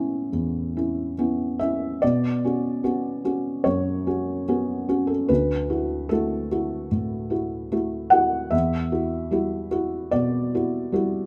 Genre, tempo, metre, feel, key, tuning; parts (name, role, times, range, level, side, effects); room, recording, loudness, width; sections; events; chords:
neoclassical minimalist piano; 74 BPM; 4/4; rubato; B minor; A4 = 440 Hz
felt-muted upright piano; solo; 0.0-11.3 s; D2 to F#5; -24 LUFS; equal
light reverb; -24 LUFS; mono
0.0-2.0 A section; 2.0-11.3 A section
0.0 Aadd9; 2.0 Bmadd9; 5.3 Dadd9; 8.5 Emadd9